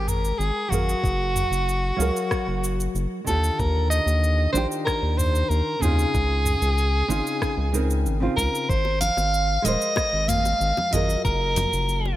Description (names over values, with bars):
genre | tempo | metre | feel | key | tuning
sunset chillout | 94 BPM | 4/4 | straight | Ab major | A4 = 440 Hz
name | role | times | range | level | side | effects
breathy soprano saxophone | melody | 0.0-12.2 s | Gb4 to F5 | -24 LUFS | equal | vintage 12-bit sampler grit, digital delay
nylon-string guitar | accompaniment | 0.0-12.2 s | Db3 to G5 | -29 LUFS | right 1 dB | auto-pan, low-pass filter, digital delay
round analog bass | bass | 0.0-12.1 s | Eb1 to Eb2 | -24 LUFS | equal | none
smooth R&B drum kit | drums | 0.1-12.0 s | cabasa, hi-hat, rim click, toms | -30 LUFS | equal | none
electronic kick drum | drums | 1.0-11.4 s | none | -27 LUFS | equal | none
bongos and congas | percussion | 8.8-12.2 s | none | -33 LUFS | left 3 dB | none
room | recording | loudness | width
light reverb, digital ambience | none | -20 LUFS | side -14 dB against mid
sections
0.0-12.2 A section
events
none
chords
0.0 Abmaj9; 1.0 Gbmaj9; 3.3 Ebmaj9; 6.1 Dbmaj9; 8.7 Abadd9; 11.2 Gbmaj9